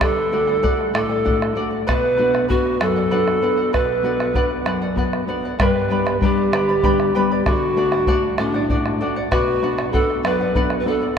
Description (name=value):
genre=andean folk, Andean ensemble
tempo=64 BPM (dotted quarters)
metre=6/8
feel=straight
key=B minor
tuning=A4 = 441 Hz
part: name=pan flute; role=melody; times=0.0-11.2 s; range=D4 to B4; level=-20 LUFS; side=right 1 dB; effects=none
part: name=charango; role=accompaniment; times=0.0-11.2 s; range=G4 to B5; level=-25 LUFS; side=right 1 dB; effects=none
part: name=nylon-string guitar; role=accompaniment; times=0.0-11.2 s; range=F#2 to F#4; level=-23 LUFS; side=left 3 dB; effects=none
part: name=bombo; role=percussion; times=0.0-10.8 s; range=none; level=-24 LUFS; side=equal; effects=none
room=wet cathedral reverb, RT60 5.1 s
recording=in a vast, echoing space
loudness=-17 LUFS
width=side -7 dB against mid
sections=0.0-5.6 A section; 5.6-11.2 A section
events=none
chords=0.0 D; 1.9 Bm; 5.6 G; 7.5 D; 9.3 Bm